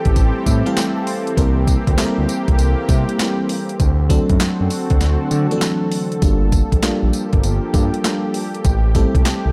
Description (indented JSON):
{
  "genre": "R&B, new jack swing",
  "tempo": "99 BPM",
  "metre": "4/4",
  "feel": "swing 66% on 16ths",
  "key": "G dorian",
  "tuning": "A4 = 441 Hz",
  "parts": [
    { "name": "FM electric piano", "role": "accompaniment", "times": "0.0-9.5 s", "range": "E3 to C6", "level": "-24 LUFS", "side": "equal", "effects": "chorus" },
    { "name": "lush unison pad", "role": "sustained chords", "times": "0.0-9.5 s", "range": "D3 to A4", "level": "-28 LUFS", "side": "equal", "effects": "chorus" },
    { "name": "smooth synth bass", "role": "bass", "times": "0.1-9.5 s", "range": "G1 to D3", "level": "-20 LUFS", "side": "equal", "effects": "none" },
    { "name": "clean 12-bit digital drum machine", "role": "drums", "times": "0.1-9.4 s", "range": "handclaps, hi-hat, kick drum, snare drum, tambourine", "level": "-20 LUFS", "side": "equal", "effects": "overdrive" }
  ],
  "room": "little or no reverb",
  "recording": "none",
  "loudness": "-17 LUFS",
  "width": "mono",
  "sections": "0.0-9.5 A section",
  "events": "FM electric piano fill 0.2-1.4, 9.3; break 5.0-6.2",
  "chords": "0.0 Am7; 1.4 C7; 3.8 D7; 6.2 Gm9; 8.6 Am7"
}